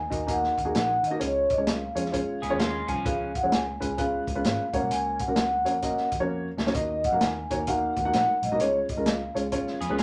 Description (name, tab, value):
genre	uptempo 1960s-style soul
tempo	130 BPM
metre	4/4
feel	swing 63% on 8ths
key	unclear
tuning	A4 = 438 Hz
part	vibraphone with soft mallets	melody	0.0-9.8 s	Db5 to Ab5	-29 LUFS	equal	none
part	vintage muted picked electric bass	bass	0.0-10.0 s	Ab1 to Eb3	-38 LUFS	equal	none
part	dark upright piano	accompaniment	0.1-10.0 s	Ab3 to Ab5	-32 LUFS	equal	none
part	vintage drum kit	drums	0.1-10.0 s	hi-hat, kick drum, snare drum	-33 LUFS	equal	none
part	electric guitar at the edge of break-up	riff	2.4-3.3, 9.8-10.0 s	F3 to Ab4	-34 LUFS	equal	warbly pitch drift
part	congas	percussion	7.0-10.0 s	none	-44 LUFS	equal	none
room	wet club reverb, RT60 0.6 s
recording	none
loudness	-26 LUFS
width	mono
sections	0.0-10.0 A section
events	drum fill 6.3-6.7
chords	0.0 Ebm; 1.2 Db; 3.1 Db7; 4.7 Gb; 6.7 Ebm; 8.6 Db